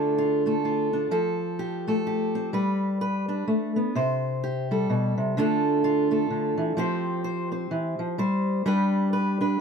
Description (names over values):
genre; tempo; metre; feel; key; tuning
folk, solo fingerstyle acoustic guitar; 127 BPM; 3/4; swing 59% on 8ths; unclear; A4 = 438 Hz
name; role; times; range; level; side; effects
fingerpicked steel-string acoustic guitar; solo; 0.0-9.6 s; B2 to C5; -23 LUFS; equal; none
room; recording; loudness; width
little or no reverb; close, detailed microphones; -23 LUFS; side -6 dB against mid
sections
0.0-9.6 A section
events
none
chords
0.0 Dm; 1.1 Fadd9; 2.5 G; 4.0 C5; 5.4 Dm; 6.8 Fsus2; 8.2 Gsus4; 8.7 G